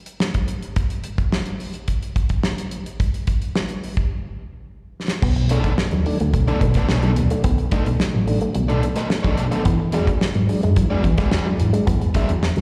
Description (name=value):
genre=funk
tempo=108 BPM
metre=4/4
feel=straight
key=unclear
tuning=A4 = 440 Hz
part: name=damped 70s drum kit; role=drums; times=0.1-12.6 s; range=crash cymbal, hi-hat, kick drum, snare drum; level=-24 LUFS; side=equal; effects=none
part: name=electric guitar with an envelope filter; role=riff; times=5.2-12.6 s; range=F#3 to B3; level=-28 LUFS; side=equal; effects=slapback echo
part: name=mellow tonewheel organ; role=stabs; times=5.2-12.3 s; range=B2 to D4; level=-27 LUFS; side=equal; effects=slow rotary speaker, slapback echo
part: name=fingered electric bass with an envelope filter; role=bass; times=5.2-12.6 s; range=A1 to E3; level=-22 LUFS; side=equal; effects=none
part: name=crunchy overdriven guitar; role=accompaniment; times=5.5-12.3 s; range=B3 to E5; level=-31 LUFS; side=equal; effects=slapback echo
room=light reverb, studio ambience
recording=live gig heard through the venue's PA, recital hall reverb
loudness=-20 LUFS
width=mono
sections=0.0-5.2 A section; 5.2-12.6 B section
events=drum fill 4.1-5.2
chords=0.0 N.C.; 5.2 B7#9; 9.7 E9